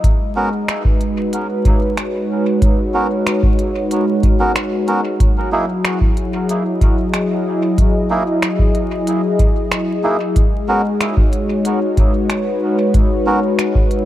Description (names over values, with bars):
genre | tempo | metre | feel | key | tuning
ambient dub | 93 BPM | 4/4 | straight | G# minor | A4 = 438 Hz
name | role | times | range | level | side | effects
warm analog pad | sustained chords | 0.0-14.1 s | F#3 to D#5 | -18 LUFS | left 1 dB | chorus
electronic kick drum | drums | 0.0-13.9 s | none | -15 LUFS | equal | none
organic electronic drum kit | drums | 0.0-14.0 s | finger snaps, hi-hat | -24 LUFS | right 1 dB | dub echo
melodica | stabs | 0.4-13.4 s | A#3 to A#4 | -22 LUFS | right 2 dB | dub echo
room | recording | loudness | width
light reverb | dark, warm production, vinyl crackle | -14 LUFS | side -13 dB against mid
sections
0.0-14.1 A section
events
none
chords
0.0 G#m11; 5.2 F#7sus2; 10.4 G#m11